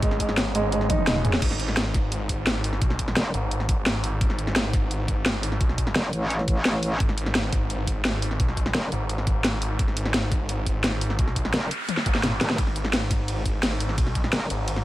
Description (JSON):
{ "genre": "dark technical drum and bass", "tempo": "172 BPM", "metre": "4/4", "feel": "straight", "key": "G# phrygian", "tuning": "A4 = 440 Hz", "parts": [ { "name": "dark analog pad", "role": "sustained chords", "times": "0.0-1.4 s", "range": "G#3 to C#5", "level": "-36 LUFS", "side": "left 1 dB", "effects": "none" }, { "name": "felt-muted upright piano", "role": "arpeggios", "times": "0.0-1.3 s", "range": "G#3 to G#4", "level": "-26 LUFS", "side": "right 3 dB", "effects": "sidechain pumping, digital delay" }, { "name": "snarling distorted saw bass", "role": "bass", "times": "0.0-14.8 s", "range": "D#1 to B1", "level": "-27 LUFS", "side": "equal", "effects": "distortion, overdrive, sidechain pumping" }, { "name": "drum and bass drum kit", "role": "drums", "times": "0.0-14.8 s", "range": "crash cymbal, hi-hat, ride cymbal, snare drum, toms", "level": "-26 LUFS", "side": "equal", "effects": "none" }, { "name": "electronic kick drum", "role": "drums", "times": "0.0-14.2 s", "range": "none", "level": "-24 LUFS", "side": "equal", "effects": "none" }, { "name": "metallic wobble bass", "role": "bass", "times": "3.2-3.3, 6.0-8.9, 11.5-14.5 s", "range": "D#1 to A1", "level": "-25 LUFS", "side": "equal", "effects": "chorus" }, { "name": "noise sweep", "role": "sound effects", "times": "11.4-12.6 s", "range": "none", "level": "-33 LUFS", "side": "right 3 dB", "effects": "none" } ], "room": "digital ambience", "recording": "none", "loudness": "-22 LUFS", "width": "side -16 dB against mid", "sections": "0.0-1.4 A section; 1.4-14.8 A section", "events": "drop 0.0-1.4, 1.4-14.8; drum fill 0.9-1.4, 11.9-12.6; noise sweep 11.4-12.6", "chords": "0.0 G#m", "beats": "| 0.03 0.37 0.72 1.07 | 1.42 1.77 2.12 2.47 | 2.82 3.17 3.51 3.86 | 4.21 4.56 4.91 5.26 | 5.61 5.96 6.30 6.65 | 7.00 7.35 7.70 8.05 | 8.40 8.75 9.10 9.44 | 9.79 10.14 10.49 10.84 | 11.19 11.54 11.89 12.23 | 12.58 12.93 13.28 13.63 | 13.98 14.33 14.68" }